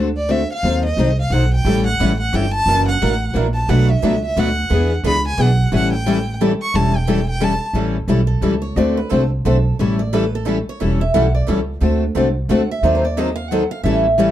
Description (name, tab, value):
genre	acoustic string swing (jazz manouche)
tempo	177 BPM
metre	3/4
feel	swing 60% on 8ths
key	A mixolydian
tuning	A4 = 440 Hz
part	picked steel-string acoustic guitar	accompaniment	0.0-14.3 s	B2 to A4	-20 LUFS	left 4 dB	none
part	upright bass	bass	0.0-14.3 s	E1 to E2	-18 LUFS	right 1 dB	none
part	warm violin	melody	0.2-7.7 s	D5 to C#6	-22 LUFS	right 1 dB	none
part	picked swing-style acoustic guitar	accompaniment	1.7-14.3 s	B2 to B4	-25 LUFS	right 6 dB	none
part	picked steel-string acoustic guitar	second line	8.3-14.3 s	A4 to F#5	-22 LUFS	right 3 dB	none
room	moderate small room reverb, RT60 0.6 s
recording	dark, warm production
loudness	-15 LUFS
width	side -12 dB against mid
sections	0.0-7.8 A section; 7.8-14.3 A section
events	violin solo 0.0-7.8; steel-string acoustic guitar solo 7.8-14.3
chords	0.0 D7; 0.6 D#dim7; 1.7 A7; 2.7 F#7alt; 3.7 Bm7; 4.7 E7; 5.7 A7; 8.8 D7; 9.8 A7; 11.8 D7; 12.8 D#dim7